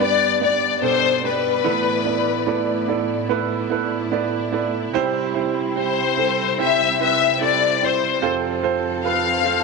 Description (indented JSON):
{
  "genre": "pop ballad",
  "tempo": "73 BPM",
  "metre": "4/4",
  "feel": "straight",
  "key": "A minor",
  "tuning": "A4 = 442 Hz",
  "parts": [
    { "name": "rich studio violin section", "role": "melody", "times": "0.0-9.6 s", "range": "B4 to F5", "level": "-19 LUFS", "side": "left 11 dB", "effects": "none" },
    { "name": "clear grand piano", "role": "accompaniment", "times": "0.0-9.6 s", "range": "F2 to D5", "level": "-22 LUFS", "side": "right 11 dB", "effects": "none" },
    { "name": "warm studio string section", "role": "sustained chords", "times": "0.0-9.6 s", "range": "F2 to D5", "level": "-28 LUFS", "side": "left 2 dB", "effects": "none" }
  ],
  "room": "moderate plate reverb, RT60 3.5 s",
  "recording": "1960s-style stereo with parts hard left and right",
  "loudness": "-18 LUFS",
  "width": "side -3 dB against mid",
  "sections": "0.0-9.6 A section",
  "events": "none",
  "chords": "0.0 G; 1.7 Asus2; 4.9 C; 8.2 F"
}